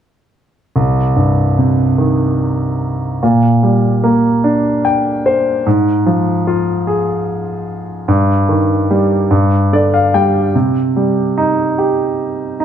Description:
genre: pop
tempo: 49 BPM (dotted quarters)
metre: 6/8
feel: straight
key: C minor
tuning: A4 = 440 Hz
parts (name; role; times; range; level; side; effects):
- clear concert grand piano; accompaniment; 0.8-12.6 s; C2 to G5; -12 LUFS; equal; none
room: wet echo chamber reverb, RT60 1.5 s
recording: none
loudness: -12 LUFS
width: side -9 dB against mid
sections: 0.8-10.5 A section; 10.5-12.6 B section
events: grand piano fill 4.4-5.7, 9.3-10.5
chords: 0.8 Cm; 3.2 Gm/Bb; 5.7 Fm/Ab; 8.1 Eb/G; 9.3 G5; 10.5 Cm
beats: | 0.76 1.99 | 3.22 4.44 | 5.66 6.87 | 8.09 9.31 | 10.55 11.78

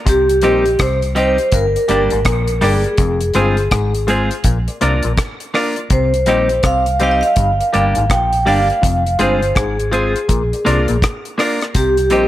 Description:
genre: roots reggae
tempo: 82 BPM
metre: 4/4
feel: swing 63% on 16ths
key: C minor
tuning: A4 = 440 Hz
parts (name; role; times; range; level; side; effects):
- vibraphone with medium hard mallets; melody; 0.1-12.3 s; G4 to G5; -16 LUFS; equal; tape echo
- overdriven clav; riff; 0.1-12.3 s; F2 to C3; -24 LUFS; left 5 dB; phaser
- vintage muted fingered electric bass; bass; 0.1-12.3 s; F1 to C2; -19 LUFS; equal; none
- deep reggae drum kit; drums; 0.1-12.3 s; hi-hat, kick drum, rim click; -19 LUFS; equal; none
- clean electric guitar; accompaniment; 0.4-12.3 s; G3 to Bb4; -21 LUFS; right 2 dB; tape echo
- clear upright piano; stabs; 0.4-12.3 s; F4 to Eb5; -22 LUFS; left 3 dB; none
room: light reverb, small room ambience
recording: none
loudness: -13 LUFS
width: side -14 dB against mid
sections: 0.0-12.3 A section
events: none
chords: 0.1 Cm; 1.5 Gm; 3.0 Fm; 4.4 Bb; 5.9 Cm; 7.4 Gm; 8.8 Fm; 10.3 Bb; 11.8 Cm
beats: | 0.07 0.80 1.53 2.26 | 2.99 3.72 4.45 5.18 | 5.91 6.64 7.37 8.10 | 8.83 9.56 10.29 11.02 | 11.75

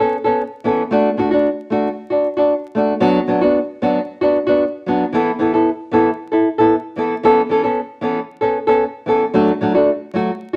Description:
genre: highlife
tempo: 114 BPM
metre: 4/4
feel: straight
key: A major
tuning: A4 = 440 Hz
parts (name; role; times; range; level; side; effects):
- nylon-string guitar; solo; 0.0-10.6 s; E3 to A4; -17 LUFS; equal; none
room: moderate studio reverb, RT60 0.7 s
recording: vinyl crackle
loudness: -17 LUFS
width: mono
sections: 0.0-10.6 A section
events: none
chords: 0.0 Aadd9; 0.9 D; 3.0 Bm; 5.1 Esus4; 7.2 Aadd9; 9.3 D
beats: 0.39 | 0.92 1.45 1.97 2.50 | 3.03 3.55 4.08 4.61 | 5.13 5.66 6.18 6.71 | 7.23 7.76 8.28 8.81 | 9.33 9.86 10.38

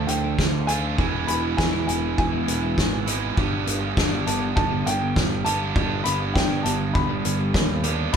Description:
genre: indie rock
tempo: 101 BPM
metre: 4/4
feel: straight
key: unclear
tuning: A4 = 440 Hz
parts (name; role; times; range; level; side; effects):
- dark upright piano; melody; 0.0-8.2 s; G5 to B5; -29 LUFS; equal; none
- distorted electric guitar; riff; 0.0-8.2 s; E2 to G4; -25 LUFS; right 4 dB; distortion
- twelve-string electric guitar; riff; 0.0-8.2 s; D3 to E4; -33 LUFS; left 8 dB; none
- picked electric bass; bass; 0.0-8.2 s; E1 to G2; -27 LUFS; equal; none
- loose indie drum kit; drums; 0.1-8.2 s; crash cymbal, hi-hat, kick drum, snare drum; -24 LUFS; left 1 dB; none
room: light reverb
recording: band playing live in one room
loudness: -20 LUFS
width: side -7 dB against mid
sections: 0.0-8.1 A section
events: none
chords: 0.0 Dm; 1.0 E; 3.4 G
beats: 0.39 | 0.98 1.58 2.18 2.78 | 3.37 3.97 4.57 5.16 | 5.76 6.36 6.95 7.55 | 8.14

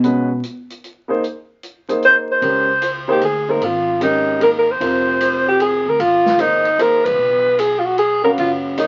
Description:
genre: modal jazz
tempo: 151 BPM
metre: 3/4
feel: swing 67% on 8ths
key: unclear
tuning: A4 = 440 Hz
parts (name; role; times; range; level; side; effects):
- warm upright piano; accompaniment; 0.0-8.9 s; C3 to F5; -22 LUFS; equal; none
- upright bass; bass; 0.0-0.4, 2.4-8.9 s; F1 to B2; -28 LUFS; equal; none
- open jazz drum kit; drums; 0.0-8.9 s; hi-hat, kick drum, ride cymbal, snare drum; -31 LUFS; equal; none
- breathy alto saxophone; melody; 2.0-8.9 s; Eb4 to B#4; -17 LUFS; equal; none
room: moderate studio reverb, RT60 0.5 s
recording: very old 78 rpm record, vinyl crackle, nothing above 7.5 kHz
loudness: -17 LUFS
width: mono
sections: 0.0-2.4 A section; 2.4-8.9 B section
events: upright bass solo 0.0-2.4; band accent 7.0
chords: 0.0 Eadd9 (rootless); 1.2 G#; 2.4 Dbmaj9; 7.2 Cbsus2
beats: | 0.04 0.44 0.83 | 1.23 1.63 2.02 | 2.42 2.82 3.22 | 3.61 4.01 4.41 | 4.81 5.21 5.60 | 6.00 6.40 6.80 | 7.20 7.59 7.99 | 8.39 8.79

